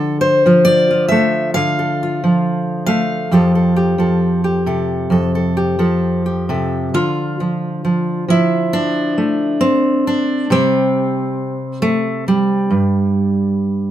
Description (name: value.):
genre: folk, solo fingerstyle acoustic guitar.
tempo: 68 BPM.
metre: 4/4.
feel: straight.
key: unclear.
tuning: A4 = 442 Hz.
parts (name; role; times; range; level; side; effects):
fingerpicked steel-string acoustic guitar; solo; 0.0-13.9 s; F2 to F5; -14 LUFS; equal; none.
room: moderate studio reverb, RT60 0.9 s.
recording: minimal, uncompressed stereo recording.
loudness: -14 LUFS.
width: side -11 dB against mid.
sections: 0.0-6.9 A section; 6.9-13.9 B section.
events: none.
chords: 0.0 Dm; 3.3 Fadd9; 6.9 Dmadd9; 10.5 C5.